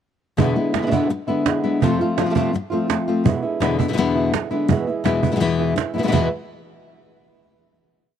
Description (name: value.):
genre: flamenco.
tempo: 167 BPM.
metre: 4/4.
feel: straight.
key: E phrygian dominant.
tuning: A4 = 440 Hz.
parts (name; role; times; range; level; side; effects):
nylon-string guitar; accompaniment; 0.4-6.3 s; E2 to F4; -20 LUFS; left 5 dB; none.
flamenco guitar; stabs; 0.4-6.3 s; E2 to F4; -24 LUFS; right 5 dB; none.
cajon; percussion; 0.4-6.2 s; none; -22 LUFS; right 8 dB; none.
room: little or no reverb.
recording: dry, close 1970s-style studio recording.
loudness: -18 LUFS.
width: side -9 dB against mid.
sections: 0.4-6.1 groove; 6.1-7.6 final chord.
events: none.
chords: 0.4 E7; 1.8 F; 3.3 E7; 4.7 E.